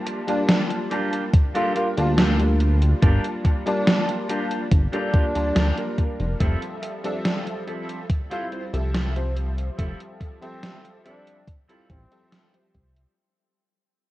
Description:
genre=vaporwave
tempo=71 BPM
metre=4/4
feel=straight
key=F major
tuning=A4 = 440 Hz
part: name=bright electric grand piano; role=accompaniment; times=0.0-13.1 s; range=F3 to A5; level=-28 LUFS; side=left 1 dB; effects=ensemble chorus, vintage 12-bit sampler grit, tape echo
part: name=clean electric guitar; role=riff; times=0.1-12.8 s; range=C4 to C5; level=-35 LUFS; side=right 1 dB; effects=wide subtle chorus, tape echo
part: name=gated 80s digital drum machine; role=drums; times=0.1-13.1 s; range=hi-hat, snare drum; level=-24 LUFS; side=equal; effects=gated reverb, gated reverb snare, studio reverb
part: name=breathy flugelhorn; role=melody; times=0.3-12.5 s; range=C4 to F4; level=-30 LUFS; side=equal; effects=tape echo
part: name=electronic kick drum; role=drums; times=1.3-12.9 s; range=none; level=-19 LUFS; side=equal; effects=studio reverb
part: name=chorused synth bass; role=bass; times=2.0-13.1 s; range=F1 to D2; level=-21 LUFS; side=equal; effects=none
room=digital ambience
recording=cassette tape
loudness=-20 LUFS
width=side -16 dB against mid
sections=0.0-13.2 A section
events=fade-out 4.2-13.2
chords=0.0 Gm7; 6.4 Fmaj7

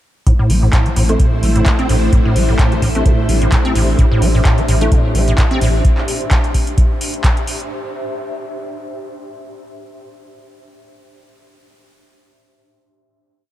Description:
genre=acid house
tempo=129 BPM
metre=4/4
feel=swing 55% on 16ths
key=A minor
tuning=A4 = 441 Hz
part: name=string machine, full ensemble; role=sustained chords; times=0.3-5.8 s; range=A3 to C5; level=-23 LUFS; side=equal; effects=ensemble chorus, sidechain pumping
part: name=acid bass, square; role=riff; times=0.3-5.7 s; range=A2 to C4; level=-19 LUFS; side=equal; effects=overdrive, wide subtle chorus, cassette tape, sidechain pumping, diffuse ambient delay
part: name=booming analog drum machine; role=drums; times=0.3-7.7 s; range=handclaps, hi-hat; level=-24 LUFS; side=equal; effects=overdrive
part: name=electronic kick drum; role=drums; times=0.3-7.3 s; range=none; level=-14 LUFS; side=equal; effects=none
part: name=granular cloud pad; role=texture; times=1.4-7.7 s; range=D4 to E5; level=-25 LUFS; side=equal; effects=built-in reverb, sidechain pumping
part: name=saturated sub bass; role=bass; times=0.5-5.8 s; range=A1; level=-16 LUFS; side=equal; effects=tube saturation, sidechain pumping
part: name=deep mellow chord stab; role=stabs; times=1.1-5.0 s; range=C4 to A4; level=-28 LUFS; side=right 1 dB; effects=none
room=light reverb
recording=none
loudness=-12 LUFS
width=side -13 dB against mid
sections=0.3-7.7 groove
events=filter sweep on acid bass 0.3-5.8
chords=0.3 Am

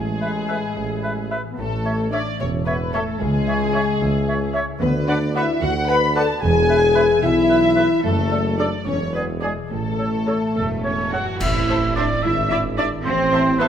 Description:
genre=cinematic, playful, whimsical film cue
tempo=74 BPM (dotted quarters)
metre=6/8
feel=straight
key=A major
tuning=A4 = 444 Hz
part: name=muted studio violin section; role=melody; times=0.0-13.7 s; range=G#4 to B5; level=-30 LUFS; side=left 3 dB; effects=none
part: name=muted studio violin section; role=second line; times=0.0-13.7 s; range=G#4 to B5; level=-28 LUFS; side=left 2 dB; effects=none
part: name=mellow French horn section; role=sustained chords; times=0.0-13.7 s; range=G#3 to B4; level=-22 LUFS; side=left 2 dB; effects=none
part: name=concert harp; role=arpeggios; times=0.0-13.7 s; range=E2 to C#6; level=-30 LUFS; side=left 9 dB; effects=none
part: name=mellow tuba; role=bass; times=0.0-13.7 s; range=E1 to D2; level=-27 LUFS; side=right 4 dB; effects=none
part: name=muted studio cello section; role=bass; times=0.0-13.7 s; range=C#2 to F#4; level=-26 LUFS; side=right 3 dB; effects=none
part: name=muted studio double bass section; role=bass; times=0.0-13.7 s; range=E1 to D2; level=-29 LUFS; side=right 4 dB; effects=none
part: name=concert flute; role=second line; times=0.2-11.2 s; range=C#5 to F#5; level=-30 LUFS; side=equal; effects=none
part: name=warm oboe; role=second line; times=0.2-13.7 s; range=G#4 to F#5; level=-27 LUFS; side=right 2 dB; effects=none
part: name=muted studio viola section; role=accompaniment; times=0.5-13.7 s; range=G#4 to E5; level=-29 LUFS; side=right 1 dB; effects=none
part: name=cymbal swell, clash cymbals and concert bass drum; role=percussion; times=8.0-12.5 s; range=none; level=-30 LUFS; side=equal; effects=none
room=moderate scoring stage reverb, RT60 1.7 s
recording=none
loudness=-18 LUFS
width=side -9 dB against mid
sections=0.0-11.4 A section; 11.4-13.7 B section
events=band accent 11.4-12.0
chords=0.0 E/A; 1.6 A; 3.2 A/C#; 4.8 Bm/D; 6.4 E; 8.0 D/F#; 8.9 E7; 9.7 A; 11.4 Am; 12.2 E7/G#; 13.1 Am

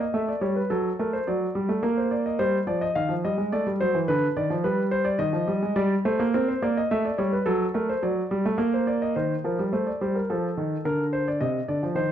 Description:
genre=classical, baroque-style two-part invention for grand piano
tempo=106 BPM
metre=3/4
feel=straight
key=C minor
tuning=A4 = 439 Hz
part: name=warm concert grand piano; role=solo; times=0.0-12.1 s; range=C3 to F5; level=-23 LUFS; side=equal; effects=none
room=moderate recital hall reverb, RT60 1.5 s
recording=dark, warm production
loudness=-23 LUFS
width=side -10 dB against mid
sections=0.0-9.2 A section; 9.2-12.1 B section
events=none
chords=0.1 A7; 0.7 D7/F#; 1.8 Bbadd9; 2.4 Cm; 3.5 D7; 4.1 G7/D; 5.2 Ebadd9; 5.8 Gm; 6.9 A7; 7.5 D/F#; 8.6 Bbadd9; 9.2 Cm7/Eb; 10.3 F; 10.9 Bb/D

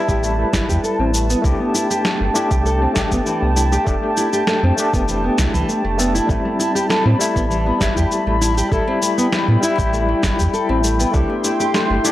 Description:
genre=organic downtempo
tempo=99 BPM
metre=4/4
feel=straight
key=A minor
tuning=A4 = 442 Hz
part: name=overdriven tine electric piano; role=accompaniment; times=0.0-12.1 s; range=G3 to A4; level=-22 LUFS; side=left 2 dB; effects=fast tremolo, sidechain pumping, tape echo
part: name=warbly tape-like pad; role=sustained chords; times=0.0-12.1 s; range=E4 to C6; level=-23 LUFS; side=left 1 dB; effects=chorus, built-in reverb, sidechain pumping
part: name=nylon-string guitar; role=arpeggios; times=0.0-12.1 s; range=E3 to A4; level=-22 LUFS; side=right 1 dB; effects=low-pass filter, tape echo
part: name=warm sub bass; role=bass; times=0.1-12.0 s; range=F1 to A2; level=-19 LUFS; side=equal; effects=none
part: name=electronic cabasa and snare drum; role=drums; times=0.1-12.1 s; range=none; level=-23 LUFS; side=equal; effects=none
part: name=electronic kick drum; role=drums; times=0.1-11.3 s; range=none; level=-22 LUFS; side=equal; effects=overdrive
room=little or no reverb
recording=dry, gritty hardware recording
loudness=-15 LUFS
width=side -14 dB against mid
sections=0.0-12.1 A section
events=none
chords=0.0 Amadd9; 1.4 C6; 3.9 Fadd9; 6.3 Amadd9; 11.1 C6

